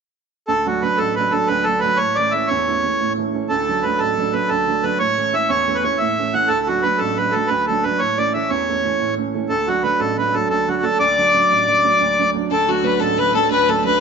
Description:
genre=celtic folk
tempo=120 BPM (dotted quarters)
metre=9/8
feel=straight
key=D major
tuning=A4 = 440 Hz
part: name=accordion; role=melody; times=0.5-14.0 s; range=F#4 to F#5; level=-17 LUFS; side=equal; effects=none
part: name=warm upright piano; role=accompaniment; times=0.5-14.0 s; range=A1 to D4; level=-22 LUFS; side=right 8 dB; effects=none
part: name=clear fiddle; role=second line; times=12.5-14.0 s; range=F#4 to B4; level=-18 LUFS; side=left 12 dB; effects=none
room=wet echo chamber reverb, RT60 1.7 s, small room ambience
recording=1960s-style stereo with parts hard left and right, nothing above 7.8 kHz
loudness=-16 LUFS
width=side -6 dB against mid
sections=0.5-12.5 A section; 12.5-14.0 A section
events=none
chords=0.5 D; 2.0 A; 3.5 D; 5.0 A; 6.5 D; 8.0 A; 9.5 D

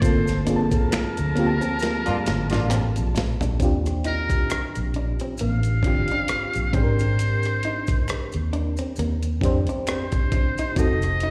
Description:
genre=R&B, neo-soul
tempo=67 BPM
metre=4/4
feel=swing 56% on 16ths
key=unclear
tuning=A4 = 442 Hz
part: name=trumpet with metal mute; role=melody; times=0.0-11.3 s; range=Bb4 to F5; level=-31 LUFS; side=equal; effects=slapback echo
part: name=FM electric piano with tremolo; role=accompaniment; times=0.0-11.3 s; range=Bb3 to A5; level=-30 LUFS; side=equal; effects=slapback echo
part: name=warm studio string section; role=sustained chords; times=0.0-3.6 s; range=F3 to A5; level=-37 LUFS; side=equal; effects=none
part: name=vintage muted fingered electric bass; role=bass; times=0.0-11.3 s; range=F1 to G2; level=-26 LUFS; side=equal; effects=none
part: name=dusty soul sampler-style drum kit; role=drums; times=0.0-11.3 s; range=finger snaps, hi-hat, kick drum, rim click, snare drum, toms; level=-27 LUFS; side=equal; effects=none
part: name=maracas and finger snaps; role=percussion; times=0.0-11.2 s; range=none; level=-44 LUFS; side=equal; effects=slapback echo
part: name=vintage hollow-body jazz guitar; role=second line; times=0.5-11.3 s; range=Bb3 to Eb4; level=-34 LUFS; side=equal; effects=tape echo
part: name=warm horn section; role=stabs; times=2.1-2.8 s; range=Bb3 to F4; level=-31 LUFS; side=equal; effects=slapback echo
room=light reverb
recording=live gig heard through the venue's PA, recital hall reverb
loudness=-23 LUFS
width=mono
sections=0.0-3.6 A section; 3.6-11.3 B section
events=band accent 0.0-3.6; drum fill 1.8-3.6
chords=0.0 Gm9; 3.6 Ebmaj9; 6.7 Abmaj7; 10.8 F7b9

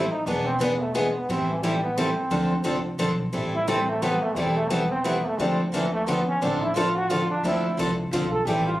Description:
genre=acoustic string swing (jazz manouche)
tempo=175 BPM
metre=3/4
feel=swing 61% on 8ths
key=unclear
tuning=A4 = 440 Hz
part: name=brilliant trombone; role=second line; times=0.0-8.8 s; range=C3 to A4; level=-26 LUFS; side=right 1 dB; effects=none
part: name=picked steel-string acoustic guitar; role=accompaniment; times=0.0-8.7 s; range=D3 to A4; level=-26 LUFS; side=left 1 dB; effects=none
part: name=picked steel-string acoustic guitar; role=accompaniment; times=0.0-8.7 s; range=D3 to B4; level=-29 LUFS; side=right 1 dB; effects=none
part: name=upright bass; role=bass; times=0.0-8.8 s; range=E1 to D2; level=-33 LUFS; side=equal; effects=none
room=wet studio reverb, RT60 0.6 s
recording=recorded on a phone in the room, club reverb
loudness=-22 LUFS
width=side -15 dB against mid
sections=0.0-1.3 A section; 1.3-8.8 A section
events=trombone solo 0.0-8.8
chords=0.3 E7; 1.3 Am7; 2.3 Dm7; 3.3 Am7; 5.4 Dm7

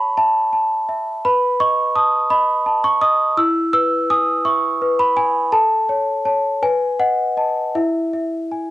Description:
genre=classical, lullaby for celesta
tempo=56 BPM (dotted quarters)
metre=6/8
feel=rubato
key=E major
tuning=A4 = 440 Hz
part: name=celesta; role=solo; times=0.0-8.7 s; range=E4 to E6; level=-15 LUFS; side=equal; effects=none
room=moderate studio reverb, RT60 0.6 s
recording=home recording on cassette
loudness=-15 LUFS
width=side -16 dB against mid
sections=0.0-8.7 A section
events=none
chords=0.0 A/C#; 1.2 B7; 3.4 E; 5.5 A; 6.6 B7; 7.8 E

